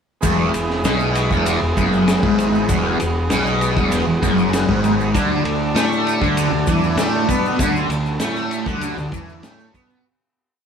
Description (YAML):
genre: psychedelic rock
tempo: 98 BPM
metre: 4/4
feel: straight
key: E mixolydian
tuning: A4 = 444 Hz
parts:
  - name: combo organ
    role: sustained chords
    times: 0.2-10.0 s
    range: D3 to A4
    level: -24 LUFS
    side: right 2 dB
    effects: none
  - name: fuzz guitar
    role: riff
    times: 0.2-10.0 s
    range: E2 to B3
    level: -19 LUFS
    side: left 1 dB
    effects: distortion, phaser
  - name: fuzz fingered electric bass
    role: bass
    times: 0.2-10.0 s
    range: E1 to B2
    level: -24 LUFS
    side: equal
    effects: overdrive
  - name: crunchy breakbeat drum kit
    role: drums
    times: 0.2-9.9 s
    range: kick drum, ride cymbal, snare drum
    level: -22 LUFS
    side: equal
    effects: none
  - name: tube shaker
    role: percussion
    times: 0.2-10.0 s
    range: none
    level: -37 LUFS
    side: left 4 dB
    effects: none
room: moderate stone room reverb, RT60 1.4 s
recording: band playing live in one room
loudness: -16 LUFS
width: side -7 dB against mid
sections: 0.2-10.0 riff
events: fade-out 7.6-10.0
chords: 0.2 E; 5.1 D5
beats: | 0.23 0.84 1.46 2.08 | 2.69 3.31 3.92 4.53 | 5.15 5.76 6.37 6.98 | 7.59 8.21 8.82 9.43